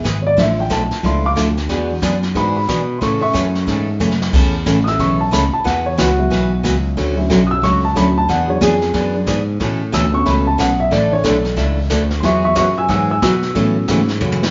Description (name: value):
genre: country, western swing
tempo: 182 BPM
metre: 4/4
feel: swing 62% on 8ths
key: A major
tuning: A4 = 439 Hz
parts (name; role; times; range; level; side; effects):
- dark upright piano; accompaniment; 0.0-14.2 s; E3 to E6; -20 LUFS; equal; none
- picked steel-string acoustic guitar; accompaniment; 0.0-14.4 s; B2 to B4; -22 LUFS; equal; none
- modern bright picked electric bass; bass; 0.0-14.5 s; G#1 to B2; -22 LUFS; equal; none
- vintage brush drum kit; drums; 0.0-14.5 s; brushed snare drum, crash cymbal, hi-hat, kick drum, snare drum, toms; -25 LUFS; equal; none
room: wet large studio reverb, RT60 0.8 s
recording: band playing live in one room, nothing above 7.5 kHz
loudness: -16 LUFS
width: mono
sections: 0.0-14.5 A section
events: upright piano solo 0.0-14.5; drum fill 4.0-4.3, 14.2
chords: 0.4 Dmadd9; 1.7 E7; 3.0 A; 5.6 Esus2; 7.0 Dmaj7; 8.3 E7; 9.6 Aadd9; 10.9 Dsus2; 12.2 Eadd9; 13.6 A6